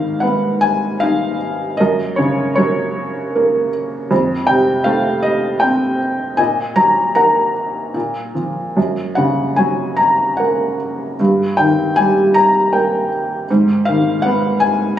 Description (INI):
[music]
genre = classical, lyrical solo piano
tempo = 73-80 BPM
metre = 3/4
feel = rubato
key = unclear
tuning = A4 = 439 Hz
[part]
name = felt-muted upright piano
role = solo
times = 0.0-15.0 s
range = F2 to Bb5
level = -14 LUFS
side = equal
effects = none
[sound]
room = light reverb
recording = recorded on a phone in the room, club reverb, compression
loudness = -14 LUFS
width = side -11 dB against mid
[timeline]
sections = 0.0-15.0 A section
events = none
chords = 0.0 Abm; 1.8 Gb6; 4.1 F; 6.4 Ebm/Bb; 8.0 Bb5; 8.8 Gb; 11.2 Eb/G; 13.5 Abm